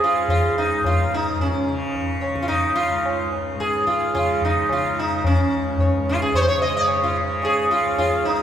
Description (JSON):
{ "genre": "indian classical, Hindustani", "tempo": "109 BPM", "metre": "7/4", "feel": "straight", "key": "Db raga hamsadhwani", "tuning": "A4 = 439 Hz", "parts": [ { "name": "sitar", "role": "melody", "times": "0.0-8.4 s", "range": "Db4 to Eb5", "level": "-20 LUFS", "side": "right 1 dB", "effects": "none" }, { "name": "tanpura", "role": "drone", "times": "0.0-8.4 s", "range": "Db2 to Db3", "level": "-29 LUFS", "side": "equal", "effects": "none" }, { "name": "tabla", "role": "percussion", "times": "0.3-8.4 s", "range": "none", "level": "-25 LUFS", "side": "left 1 dB", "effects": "none" } ], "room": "wet cathedral reverb, RT60 4.4 s", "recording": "recorded in a church or concert hall", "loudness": "-18 LUFS", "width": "side -9 dB against mid", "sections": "0.0-8.4 A section", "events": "none", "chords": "none", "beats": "0.28 0.83 | 1.39 1.94 2.49 3.04 3.59 4.14 4.69 | 5.24 5.79 6.34 6.89 7.43 7.98" }